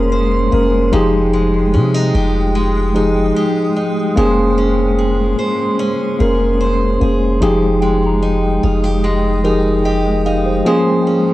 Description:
contemporary R&B; 74 BPM; 4/4; straight; F minor; A4 = 440 Hz
mellow tine electric piano; accompaniment; 0.0-11.3 s; F3 to F5; -15 LUFS; left 1 dB; medium stereo tremolo
granular cloud pad; sustained chords; 0.0-11.3 s; F3 to Eb6; -23 LUFS; equal; built-in reverb
picked steel-string acoustic guitar; arpeggios; 0.0-11.3 s; F3 to C5; -22 LUFS; right 1 dB; tape echo
long sustained 808-style bass; bass; 0.0-10.6 s; F1 to C3; -17 LUFS; equal
soft synth bell; texture; 0.0-1.1, 7.8-10.8 s; Bb4 to Eb6; -29 LUFS; equal; chorus, phaser, tape echo
little or no reverb; dry, gritty hardware recording, cassette tape; -12 LUFS; side -16 dB against mid
0.0-11.3 A section
0.0 Bbm9/F; 0.9 Fm9; 4.2 Bbm9/F; 7.4 Fm9; 10.7 Bbm9/F

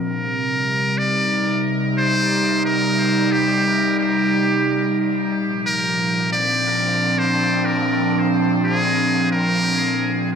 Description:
ambient; 90 BPM; 4/4; swing 60% on 16ths; C minor; A4 = 444 Hz
trumpet with metal mute; melody; 0.0-10.3 s; G4 to D5; -20 LUFS; equal; dub echo
airy breathy pad; sustained chords; 0.0-10.4 s; Bb2 to Eb4; -19 LUFS; equal; chorus
wet spring reverb, RT60 1.1 s, small room reverb; -17 LUFS; side -7 dB against mid
0.0-10.4 A section
0.0 Cm7; 5.3 Bbadd9

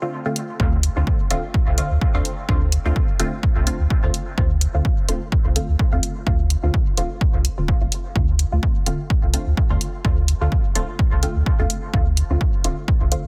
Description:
dub techno; 127 BPM; 4/4; swing 56% on 16ths; D minor; A4 = 440 Hz
filtered dub chord stab; stabs; 0.0-13.2 s; D3 to F4; -30 LUFS; equal; chorus, phaser, sidechain pumping, dub echo
electronic hi-hat; drums; 0.4-13.2 s; -26 LUFS; equal
warm sub bass; bass; 0.6-13.3 s; D1 to D2; -22 LUFS; equal; sidechain pumping
electronic kick drum; drums; 0.6-13.0 s; -23 LUFS; equal
little or no reverb; dense, heavily limited modern master; -20 LUFS; mono
0.6-13.3 A section
break 0.0-0.6; filter sweep on synth stab 0.6-13.3
0.0 Dm7

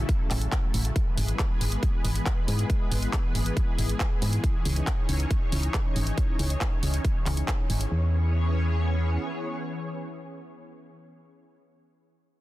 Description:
uplifting trance; 138 BPM; 4/4; straight; E major; A4 = 439 Hz
analog string pad; sustained chords; 0.0-10.9 s; C#3 to C#5; -33 LUFS; left 1 dB; ensemble chorus, sidechain pumping
solid FM bass; bass; 0.0-9.2 s; G#1 to G#2; -25 LUFS; equal; sidechain pumping
big-room dance drum kit; drums; 0.1-7.9 s; handclaps, hi-hat; -35 LUFS; equal
electronic kick drum; drums; 0.1-7.6 s; -27 LUFS; equal
little or no reverb; dense, heavily limited modern master; -24 LUFS; side -16 dB against mid
0.0-7.9 A section; 7.9-11.4 B section
0.0 A6; 1.0 E/G#; 4.4 C#madd9; 7.9 E6

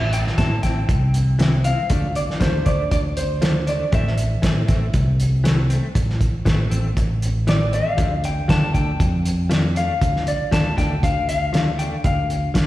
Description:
straight-eighth soul blues; 118 BPM; 4/4; straight; A minor; A4 = 441 Hz
electric guitar through a small old amp; melody; 0.0-12.7 s; C5 to A5; -25 LUFS; left 2 dB; spring reverb, slapback echo
direct-recorded clean electric guitar; stabs; 0.0-12.7 s; E3 to E4; -30 LUFS; left 3 dB; harmonic tremolo, slapback echo
fingered electric bass; bass; 0.0-12.7 s; A1 to D3; -20 LUFS; equal
cloth-damped thuddy drum kit; drums; 0.1-12.7 s; hi-hat, kick drum, snare drum; -22 LUFS; equal
light reverb; live gig heard through the venue's PA, recital hall reverb; -17 LUFS; side -15 dB against mid
0.0-12.7 A section
0.0 Am; 1.9 Dm; 3.9 Am; 8.0 Dm

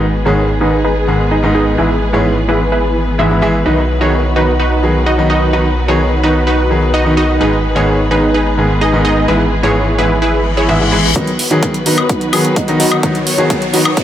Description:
EDM, festival progressive house; 128 BPM; 4/4; straight; B major; A4 = 440 Hz
clear grand piano; accompaniment; 0.0-13.9 s; G#2 to G#4; -16 LUFS; equal; sidechain pumping, tape echo
dark studio string section; sustained chords; 0.0-14.0 s; D#3 to C#5; -20 LUFS; left 2 dB; sidechain pumping
supersaw stab; riff; 0.0-14.0 s; D#4 to E5; -15 LUFS; right 1 dB; sidechain pumping, low-pass filter, tape echo
saturated sub bass; bass; 0.0-13.9 s; G#1 to B1; -18 LUFS; equal; sidechain pumping, high-pass filter
reverse cymbal and riser; sound effects; 10.4-14.0 s; -22 LUFS; left 4 dB
electronic hi-hat and woodblock; drums; 11.2-14.0 s; -17 LUFS; left 1 dB; overdrive, low-pass filter on hats, low-pass filter on perc, low-pass filter on room
electronic kick drum; drums; 11.2-14.0 s; -18 LUFS; equal; overdrive, high-pass filter on kick
light reverb; -11 LUFS; side -11 dB against mid
0.0-11.2 A section; 11.2-14.0 B section
filter sweep on supersaw synth 0.0-11.2, 11.2-14.0; reverse cymbal 10.4-11.2; build-up 11.2-14.0; riser 11.2-14.0
0.0 G#m; 1.8 E/G#; 3.7 B; 7.4 G#m; 9.3 E/G#; 11.2 B

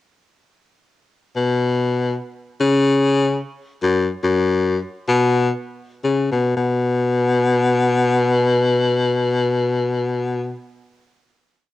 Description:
musette waltz; 110-147 BPM; 3/4; swing 54% on 8ths; A4 = 440 Hz
bright baritone saxophone; solo; 1.4-10.5 s; F#2 to C#3; -16 LUFS; left 2 dB
moderate spring reverb, RT60 1.4 s, studio ambience; home recording on cassette; -17 LUFS; side -15 dB against mid
1.4-6.6 A section; 6.6-9.8 final note
slowing down 3.8-6.6

